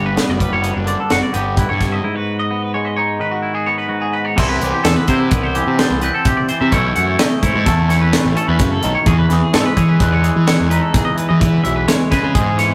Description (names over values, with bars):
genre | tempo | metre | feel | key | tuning
math rock and midwest emo | 128 BPM | 5/4 | straight | E major | A4 = 440 Hz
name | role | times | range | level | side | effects
twangy electric guitar | accompaniment | 0.0-12.7 s | E2 to G#4 | -23 LUFS | equal | none
twangy electric guitar | arpeggios | 0.0-12.7 s | F#4 to F#5 | -23 LUFS | equal | none
fuzz picked electric bass | bass | 0.0-12.7 s | F#1 to E3 | -20 LUFS | equal | overdrive
crisp fusion drum kit | drums | 0.2-12.7 s | crash cymbal, hi-hat, kick drum, snare drum | -20 LUFS | equal | none
glockenspiel with soft plastic mallets | melody | 4.4-12.7 s | C6 to A6 | -29 LUFS | equal | none
room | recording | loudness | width
moderate stone room reverb, RT60 0.9 s | rough rehearsal-room recording | -16 LUFS | mono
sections
0.0-4.4 A section; 4.4-12.7 B section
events
break 2.0-4.4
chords
0.0 Gmaj7; 2.0 G#m7; 4.4 Cmaj7; 6.7 B9sus4; 9.1 Emaj7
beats
0.16 0.63 1.10 1.57 | 2.04 2.51 2.98 3.44 3.91 | 4.38 4.85 5.32 5.79 6.26 | 6.72 7.19 7.66 8.13 8.60 | 9.07 9.54 10.01 10.47 10.94 | 11.41 11.88 12.35